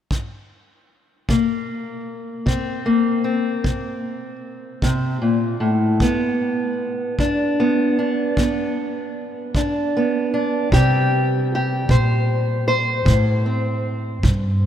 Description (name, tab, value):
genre	acoustic country blues, solo or duo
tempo	51 BPM (dotted quarters)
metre	12/8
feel	straight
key	unclear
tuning	A4 = 436 Hz
part	kick drum	drums	0.1-14.4 s	none	-23 LUFS	equal	none
part	fingerpicked steel-string acoustic guitar	melody	1.3-14.7 s	G2 to C5	-20 LUFS	equal	none
part	upright bass	bass	10.7-14.7 s	G2 to C3	-19 LUFS	equal	none
room	wet cathedral reverb, RT60 5.1 s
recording	in a vast, echoing space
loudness	-18 LUFS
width	side -10 dB against mid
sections	0.0-1.3 A section; 1.3-10.7 B section; 10.7-14.7 C section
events	none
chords	0.0 N.C.; 6.0 G; 10.7 C5